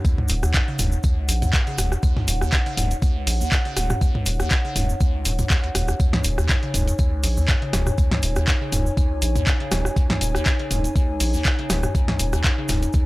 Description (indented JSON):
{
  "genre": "acid house",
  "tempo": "121 BPM",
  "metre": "4/4",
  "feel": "swing 54% on 16ths",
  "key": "Eb minor",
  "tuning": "A4 = 440 Hz",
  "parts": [
    { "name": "dark analog pad", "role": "sustained chords", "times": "0.0-13.1 s", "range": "Eb4 to Ab5", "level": "-30 LUFS", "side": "left 1 dB", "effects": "wide subtle chorus, sidechain pumping" },
    { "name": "liquid acid bass", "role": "riff", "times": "0.0-13.1 s", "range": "Db2 to Db3", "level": "-26 LUFS", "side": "equal", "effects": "phaser, wide subtle chorus, sidechain pumping" },
    { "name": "dusty soul sampler-style drum kit", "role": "drums", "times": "0.0-13.1 s", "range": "hi-hat, snare drum, tambourine", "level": "-35 LUFS", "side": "left 1 dB", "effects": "none" },
    { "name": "electronic kick drum", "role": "drums", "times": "0.0-13.0 s", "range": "none", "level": "-20 LUFS", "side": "equal", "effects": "none" },
    { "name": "cabasa", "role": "percussion", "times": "0.1-13.0 s", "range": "none", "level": "-34 LUFS", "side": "right 2 dB", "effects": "none" },
    { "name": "punchy analog drum machine", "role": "drums", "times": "0.2-12.8 s", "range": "handclaps, hi-hat, rim click, snare drum, toms", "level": "-25 LUFS", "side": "equal", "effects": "none" },
    { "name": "round analog bass", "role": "bass", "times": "0.3-12.9 s", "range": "Eb1 to Bb1", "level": "-24 LUFS", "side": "equal", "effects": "sidechain pumping" }
  ],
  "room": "digital ambience",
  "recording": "dry, gritty hardware recording",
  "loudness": "-19 LUFS",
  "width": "side -20 dB against mid",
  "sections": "0.0-13.1 A section",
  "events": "none",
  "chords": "0.0 Ebm7",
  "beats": "| 0.05 0.54 1.04 1.53 | 2.03 2.53 3.02 3.52 | 4.01 4.51 5.00 5.50 | 6.00 6.49 6.99 7.48 | 7.98 8.48 8.97 9.47 | 9.96 10.46 10.96 11.45 | 11.95 12.44 12.94"
}